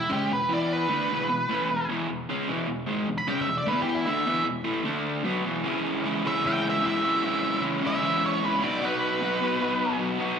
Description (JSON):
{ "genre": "rock", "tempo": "152 BPM", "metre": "4/4", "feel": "straight", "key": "E major", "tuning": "A4 = 441 Hz", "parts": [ { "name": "octave-fuzz lead guitar", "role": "melody", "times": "0.0-10.0 s", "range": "E4 to B5", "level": "-27 LUFS", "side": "right 1 dB", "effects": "distortion, slapback echo, tape echo" }, { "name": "crunchy overdriven guitar", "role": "riff", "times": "0.0-10.4 s", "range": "E2 to F#4", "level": "-26 LUFS", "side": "left 1 dB", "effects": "slapback echo" } ], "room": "moderate lush hall reverb, RT60 2.6 s", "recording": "live gig heard through the venue's PA, club reverb", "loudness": "-24 LUFS", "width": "side -7 dB against mid", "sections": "0.0-5.7 A section; 5.7-10.4 B section", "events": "none", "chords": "0.0 E; 4.9 D5; 5.3 E5; 5.7 C#m; 8.6 B" }